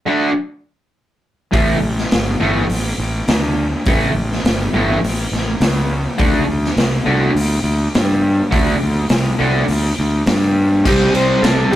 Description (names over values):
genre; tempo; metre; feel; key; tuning
garage rock duo or trio; 103 BPM; 4/4; straight; unclear; A4 = 441 Hz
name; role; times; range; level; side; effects
fuzz guitar; riff; 0.1-11.8 s; A2 to D4; -17 LUFS; equal; distortion
fuzz fingered electric bass; bass; 1.5-11.8 s; G1 to G2; -18 LUFS; equal; overdrive
raw garage drum kit; drums; 1.5-11.8 s; crash cymbal, hi-hat, kick drum, ride cymbal, snare drum; -18 LUFS; equal; none
combo organ; melody; 10.9-11.8 s; G4 to C5; -16 LUFS; equal; none
room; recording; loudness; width
moderate studio ambience, RT60 0.5 s; rough rehearsal-room recording, tube saturation; -14 LUFS; side -13 dB against mid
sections
0.0-10.8 A section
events
none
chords
0.0 D5; 1.5 A5; 6.2 D5; 10.8 C5